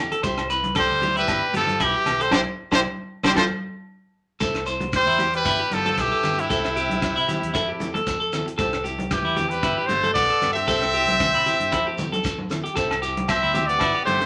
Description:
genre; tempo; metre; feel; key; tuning
highlife guitar band; 115 BPM; 4/4; swing 55% on 16ths; C major; A4 = 440 Hz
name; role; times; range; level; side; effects
picked steel-string acoustic guitar; accompaniment; 0.0-14.2 s; E3 to A4; -36 LUFS; equal; none
clean electric guitar; arpeggios; 0.0-14.2 s; E4 to C5; -28 LUFS; equal; none
fingered electric bass; bass; 0.0-14.3 s; G1 to C3; -37 LUFS; equal; none
tight funk drum kit; drums; 0.1-14.3 s; hi-hat, kick drum, rim click, snare drum; -31 LUFS; equal; none
shekere; percussion; 0.2-13.9 s; none; -38 LUFS; equal; none
agogo bells; percussion; 0.4-3.5, 12.9-13.9 s; none; -32 LUFS; equal; none
congas; percussion; 0.6-14.3 s; none; -33 LUFS; equal; none
brilliant trumpet; melody; 0.8-14.3 s; E4 to E5; -24 LUFS; equal; none
edgy tenor saxophone; second line; 0.8-14.3 s; C3 to C4; -32 LUFS; equal; none
room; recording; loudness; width
wet small room reverb, RT60 0.6 s; none; -22 LUFS; mono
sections
0.0-4.4 A section; 4.4-14.3 A section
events
band accent 2.3-4.4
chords
0.2 C; 1.3 G6; 2.3 C; 3.4 Fmaj7; 4.4 C; 5.5 G6; 6.5 C; 7.5 Fmaj7; 8.6 C; 9.6 G6; 10.7 C; 11.7 Fmaj7; 12.8 C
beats
| 0.24 0.76 1.28 1.80 | 2.33 2.85 3.37 3.89 | 4.41 4.93 5.46 5.98 | 6.50 7.02 7.54 8.07 | 8.59 9.11 9.63 10.15 | 10.68 11.20 11.72 12.24 | 12.77 13.29 13.81

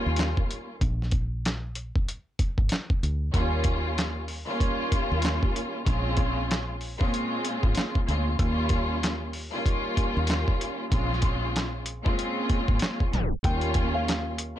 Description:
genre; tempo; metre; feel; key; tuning
hip hop, boom-bap hip-hop; 95 BPM; 4/4; swing 60% on 16ths; unclear; A4 = 439 Hz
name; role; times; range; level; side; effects
warm studio string section; accompaniment; 0.0-14.3 s; Eb2 to F4; -29 LUFS; equal; high-pass filter, low-pass filter
fingered electric bass; bass; 0.1-14.5 s; Ab1 to Eb2; -29 LUFS; equal; none
lo-fi sampler-style drum kit; drums; 0.2-14.6 s; handclaps, hi-hat, kick drum, snare drum; -26 LUFS; equal; overdrive
flamenco guitar; melody; 13.4-14.6 s; F5 to G5; -33 LUFS; left 3 dB; high-pass filter, low-pass filter
room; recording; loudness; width
little or no reverb; dry, gritty hardware recording, cassette tape, tape stop; -24 LUFS; side -12 dB against mid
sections
0.0-13.4 A section; 13.4-14.6 B section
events
tape stop 13.1-13.4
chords
0.0 Eb7; 0.8 N.C.; 3.3 Eb7; 5.9 Bbm7; 8.4 Eb7; 10.9 Bbm7; 13.4 Eb7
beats
0.18 | 0.81 1.44 2.08 2.71 | 3.34 3.97 4.60 5.23 | 5.87 6.50 7.13 7.76 | 8.39 9.02 9.65 10.29 | 10.92 11.55 12.18 12.81 | 13.44 14.07

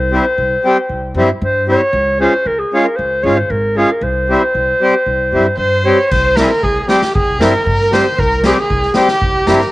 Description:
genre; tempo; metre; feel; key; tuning
klezmer; 115 BPM; 4/4; straight; C phrygian dominant; A4 = 435 Hz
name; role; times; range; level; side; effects
warm clarinet; melody; 0.0-9.7 s; G4 to Db5; -15 LUFS; equal; cassette tape
upright bass; bass; 0.0-9.6 s; Ab1 to G2; -20 LUFS; equal; none
accordion; accompaniment; 0.1-9.6 s; G3 to G4; -16 LUFS; left 1 dB; cassette tape
rich violin; second line; 5.6-9.7 s; G4 to C5; -19 LUFS; right 1 dB; cassette tape
street-band drum kit; drums; 6.1-9.7 s; crash cymbal, kick drum, snare drum; -18 LUFS; equal; cassette tape
room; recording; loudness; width
moderate spring reverb, RT60 2.2 s; home recording on cassette; -11 LUFS; side -18 dB against mid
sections
0.0-6.1 A section; 6.1-9.7 A section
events
none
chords
0.0 C; 1.9 Db; 4.0 C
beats
0.37 0.89 1.42 | 1.94 2.46 2.98 3.50 | 4.02 4.54 5.06 5.58 | 6.10 6.62 7.14 7.66 | 8.18 8.70 9.22

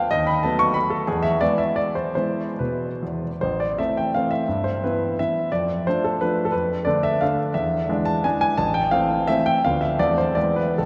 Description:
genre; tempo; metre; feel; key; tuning
classical, romantic triple-time dance for piano with dotted rhythms; 130-198 BPM; 3/4; rubato; A minor; A4 = 440 Hz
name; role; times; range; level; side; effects
warm grand piano; solo; 0.0-10.9 s; A1 to C#6; -22 LUFS; equal; none
room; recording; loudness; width
wet cathedral reverb, RT60 5.8 s; in a vast, echoing space; -22 LUFS; mono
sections
0.0-3.4 A section; 3.4-10.9 B section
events
none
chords
0.1 B7/D#; 1.1 E; 3.4 Am; 4.5 Em/G; 5.5 Dm/F; 7.6 E7; 8.6 Am; 9.6 Bdim/D; 10.0 Am/E; 10.4 E7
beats
| 0.11 0.43 0.76 | 1.07 1.41 1.78 | 2.16 2.60 3.02 | 3.42 3.79 4.15 | 4.49 4.83 5.18 | 5.51 5.86 6.21 | 6.53 6.85 7.21 | 7.55 7.89 8.24 | 8.57 8.91 9.27 | 9.62 9.98 10.36 | 10.78

